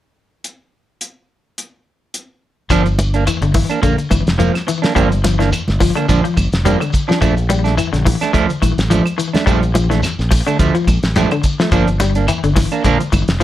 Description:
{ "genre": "afrobeat", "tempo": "106 BPM", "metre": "4/4", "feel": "swing 55% on 16ths", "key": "G dorian", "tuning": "A4 = 435 Hz", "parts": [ { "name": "cloth-damped thuddy drum kit", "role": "drums", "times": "0.4-13.4 s", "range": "hi-hat, kick drum, snare drum", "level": "-19 LUFS", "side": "equal", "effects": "none" }, { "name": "electric guitar at the edge of break-up", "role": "arpeggios", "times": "2.7-13.4 s", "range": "D3 to G3", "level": "-20 LUFS", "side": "left 6 dB", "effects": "analog chorus, slapback echo" }, { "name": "electric guitar at the edge of break-up", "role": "stabs", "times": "2.7-13.4 s", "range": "F3 to D4", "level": "-18 LUFS", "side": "right 6 dB", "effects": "none" }, { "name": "fingered electric bass", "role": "bass", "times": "2.7-13.4 s", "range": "F1 to D2", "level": "-17 LUFS", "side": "equal", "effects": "none" }, { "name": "claves", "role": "percussion", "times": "2.7-13.3 s", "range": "none", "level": "-27 LUFS", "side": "right 6 dB", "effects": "none" }, { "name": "shekere", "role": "percussion", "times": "2.7-13.4 s", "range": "none", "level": "-26 LUFS", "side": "left 1 dB", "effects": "none" }, { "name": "congas", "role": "percussion", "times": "3.0-13.4 s", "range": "none", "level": "-22 LUFS", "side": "right 1 dB", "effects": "none" } ], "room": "moderate club ambience, RT60 0.5 s", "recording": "none", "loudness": "-13 LUFS", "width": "side -13 dB against mid", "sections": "0.4-2.7 A section; 2.7-13.4 B section", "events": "none", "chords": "0.4 N.C.; 2.7 Gm7; 7.2 Bbmaj7; 11.7 Gm7", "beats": "| 0.44 1.01 1.57 2.14 | 2.70 3.27 3.83 4.40 | 4.96 5.53 6.09 6.65 | 7.22 7.78 8.34 8.91 | 9.47 10.03 10.60 11.16 | 11.72 12.29 12.85 13.41" }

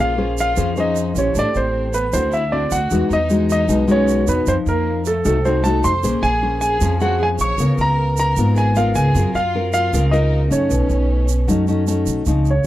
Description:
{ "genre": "bossa nova", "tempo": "154 BPM", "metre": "4/4", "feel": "straight", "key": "unclear", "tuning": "A4 = 441 Hz", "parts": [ { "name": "warm grand piano", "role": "melody", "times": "0.0-12.7 s", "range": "A4 to Db6", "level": "-20 LUFS", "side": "right 1 dB", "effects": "none" }, { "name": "warm chamber violin section", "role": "second line", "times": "0.0-11.8 s", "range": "A3 to Db5", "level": "-28 LUFS", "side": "right 2 dB", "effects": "none" }, { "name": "nylon-string guitar", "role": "accompaniment", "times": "0.0-12.7 s", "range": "Ab2 to C5", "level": "-20 LUFS", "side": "left 2 dB", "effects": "none" }, { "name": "upright bass", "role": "bass", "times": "0.0-12.7 s", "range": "Ab1 to Gb2", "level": "-20 LUFS", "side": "right 1 dB", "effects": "none" }, { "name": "tube shaker", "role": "percussion", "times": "0.4-12.7 s", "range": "none", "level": "-32 LUFS", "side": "right 22 dB", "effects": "none" } ], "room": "little or no reverb", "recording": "dry, close 1970s-style studio recording", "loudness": "-15 LUFS", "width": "side -14 dB against mid", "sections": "0.0-12.3 A section", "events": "none", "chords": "0.0 Bbm9; 1.4 Am7; 2.1 D9; 2.9 Emaj9; 4.5 F7b9; 6.0 Bbm9; 7.6 Db6; 9.2 Gbmaj7#11; 10.7 Cb9", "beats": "0.18 0.57 0.96 | 1.35 1.75 2.13 2.52 | 2.92 3.31 3.69 4.08 | 4.47 4.86 5.25 5.64 | 6.03 6.42 6.81 7.20 | 7.59 7.98 8.37 8.76 | 9.15 9.54 9.93 10.32 | 10.71 11.10 11.49 11.88 | 12.26 12.65" }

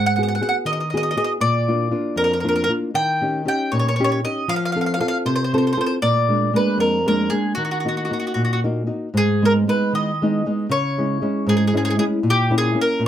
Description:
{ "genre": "italian folk, Italian serenade", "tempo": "78 BPM (dotted quarters)", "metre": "6/8", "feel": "straight", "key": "Eb harmonic minor, G# harmonic minor from 9.2 s", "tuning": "A4 = 440 Hz", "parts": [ { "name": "mandolin", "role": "melody", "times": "0.0-13.0 s", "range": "Gb4 to G5", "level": "-21 LUFS", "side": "equal", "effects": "none" }, { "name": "nylon-string guitar", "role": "accompaniment", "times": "0.0-13.1 s", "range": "F2 to A4", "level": "-20 LUFS", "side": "equal", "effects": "none" } ], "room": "light reverb", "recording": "close, detailed microphones", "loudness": "-18 LUFS", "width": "side -10 dB against mid", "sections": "0.0-9.2 A section; 9.2-13.1 B section", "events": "none", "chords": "0.0 Abm7; 1.4 Bb; 3.0 Eb7; 4.5 F; 6.0 Bb7; 7.6 Ebm; 9.2 G#m; 10.7 C#m; 12.2 A#dim", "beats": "0.65 | 1.41 2.18 | 2.95 3.73 | 4.50 5.27 | 6.04 6.81 | 7.58 8.37 | 9.15 9.93 | 10.71 11.48 | 12.25 13.01" }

